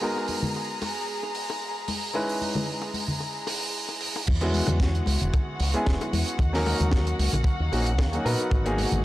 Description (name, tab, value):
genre	nu-disco, nu disco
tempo	113 BPM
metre	4/4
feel	swing 54% on 16ths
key	G# minor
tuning	A4 = 440 Hz
part	clear grand piano	accompaniment	0.0-9.0 s	F#3 to B4	-30 LUFS	equal	tape echo
part	dark chamber string section	sustained chords	0.0-9.0 s	F#4 to A#5	-34 LUFS	left 1 dB	sidechain pumping
part	bongos and congas	percussion	0.2-9.0 s	none	-32 LUFS	left 2 dB	none
part	tight funk drum kit	drums	0.3-9.0 s	crash cymbal, hi-hat, snare drum	-32 LUFS	right 2 dB	studio reverb
part	fingered electric bass with an envelope filter	bass	4.3-9.0 s	E1 to A#2	-26 LUFS	equal	tube saturation
part	kick drum	drums	4.3-8.6 s	none	-25 LUFS	equal	studio reverb
room	small room ambience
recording	dry, gritty hardware recording, cassette tape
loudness	-24 LUFS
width	side -16 dB against mid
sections	0.0-4.3 A section; 4.3-9.0 B section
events	drop 4.3-9.0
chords	0.0 G#m9; 2.1 C#m9; 4.3 E69; 6.4 D#m7; 8.5 G#m9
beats	| 0.02 0.55 1.08 1.61 | 2.15 2.68 3.21 3.74 | 4.27 4.80 5.33 5.86 | 6.39 6.92 7.46 7.99 | 8.52